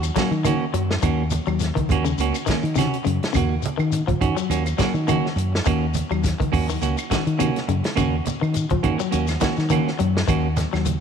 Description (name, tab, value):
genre	afrobeat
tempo	104 BPM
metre	4/4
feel	swing 54% on 16ths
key	Eb dorian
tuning	A4 = 443 Hz
part	clean electric guitar	stabs	0.0-10.9 s	Bb3 to Gb4	-26 LUFS	right 10 dB	tremolo
part	fingered electric bass	bass	0.0-11.0 s	Db2 to Eb3	-23 LUFS	equal	none
part	warm soul drum kit	drums	0.0-11.0 s	hi-hat, kick drum, snare drum	-27 LUFS	equal	none
part	claves	percussion	0.0-10.9 s	none	-38 LUFS	right 14 dB	none
part	shekere	percussion	0.0-11.0 s	none	-33 LUFS	left 7 dB	none
part	electric guitar at the edge of break-up	arpeggios	0.2-10.9 s	C3 to Gb3	-26 LUFS	left 10 dB	tape echo
part	congas	percussion	0.2-11.0 s	none	-28 LUFS	right 6 dB	none
room	moderate echo chamber reverb, RT60 2.3 s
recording	1960s-style stereo with parts hard left and right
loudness	-19 LUFS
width	side -7 dB against mid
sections	0.0-11.0 A section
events	none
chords	0.0 Ebm7